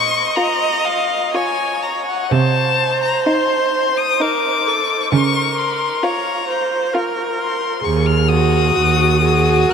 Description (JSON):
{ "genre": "classical, slow romantic movement for string quartet", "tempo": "61-67 BPM", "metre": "3/4", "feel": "rubato", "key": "Bb minor", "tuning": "A4 = 440 Hz", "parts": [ { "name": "rich violin", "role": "melody", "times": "0.0-9.7 s", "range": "F5 to Gb6", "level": "-19 LUFS", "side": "left 7 dB", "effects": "none" }, { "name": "clear viola", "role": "accompaniment", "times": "0.0-9.7 s", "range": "Gb4 to Eb5", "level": "-20 LUFS", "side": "right 3 dB", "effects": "none" }, { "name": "rich cello", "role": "bass", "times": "0.0-9.7 s", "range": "Eb2 to Db3", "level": "-17 LUFS", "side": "right 4 dB", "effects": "none" }, { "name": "rich violin", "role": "second line", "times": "0.4-9.7 s", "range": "Eb4 to Gb4", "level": "-24 LUFS", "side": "left 1 dB", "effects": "none" } ], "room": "wet huge ambient reverb, RT60 9.3 s", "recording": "in a vast, echoing space", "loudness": "-15 LUFS", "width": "side -6 dB against mid", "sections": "0.0-9.7 A section", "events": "none", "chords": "0.0 Bbm; 2.3 Cm13; 5.1 Bbm/Db; 7.8 Ebm" }